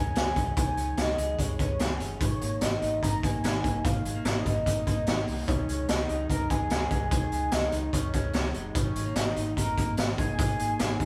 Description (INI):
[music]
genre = jangly indie pop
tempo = 147 BPM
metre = 4/4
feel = straight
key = unclear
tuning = A4 = 440 Hz
[part]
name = warm velvety synth lead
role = melody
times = 0.0-11.1 s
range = Db5 to Bb5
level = -35 LUFS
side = equal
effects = chorus
[part]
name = electric guitar through a small old amp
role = arpeggios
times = 0.0-11.1 s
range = Eb3 to Ab4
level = -37 LUFS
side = equal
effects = none
[part]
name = vintage muted fingered electric bass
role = bass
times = 0.0-11.1 s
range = Gb1 to Db2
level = -35 LUFS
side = equal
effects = none
[part]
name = raw garage drum kit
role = drums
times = 0.2-11.1 s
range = hi-hat, kick drum, snare drum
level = -31 LUFS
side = equal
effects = none
[part]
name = warm trumpet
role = second line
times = 4.7-11.1 s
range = Db4 to Bb4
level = -45 LUFS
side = equal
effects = none
[sound]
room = moderate stone room reverb, RT60 1.3 s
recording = band playing live in one room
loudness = -28 LUFS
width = mono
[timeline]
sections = 0.0-11.1 A section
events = none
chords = 0.0 Dbsus2; 2.2 Absus2; 5.5 Dbsus2; 8.8 Absus2